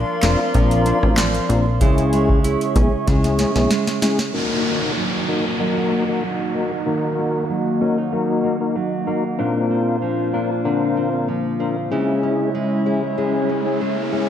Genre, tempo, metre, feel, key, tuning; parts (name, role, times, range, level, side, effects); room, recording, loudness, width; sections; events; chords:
dancehall; 95 BPM; 4/4; straight; Eb phrygian; A4 = 436 Hz
hollow soft pad; sustained chords; 0.0-14.3 s; Ab3 to Db6; -23 LUFS; left 1 dB; chorus, sidechain pumping, low-pass filter
nylon-string guitar; arpeggios; 0.0-14.3 s; Bb2 to Fb4; -25 LUFS; right 5 dB; low-pass filter
plucky analog bass; bass; 0.0-3.7 s; F1 to Db2; -20 LUFS; equal
mellow tonewheel organ; accompaniment; 0.2-14.3 s; Ab3 to Bb4; -23 LUFS; left 4 dB; chorus vibrato, low-pass filter
booming analog drum machine; drums; 0.2-4.3 s; handclaps, hi-hat, kick drum, rim click, snare drum; -20 LUFS; equal
downlifter and riser; sound effects; 4.3-14.3 s; -28 LUFS; equal
moderate lush hall reverb, RT60 1.7 s; dreamy mix soaked in reverb; -17 LUFS; side -9 dB against mid
0.0-4.3 A section; 4.3-14.3 B section
drum fill 3.1-4.3; filter sweep 4.3-14.3; riser 13.1-14.3
0.0 Bbadd9; 1.8 Dbm; 4.3 Ebm; 9.4 Bbadd9; 11.9 Dbm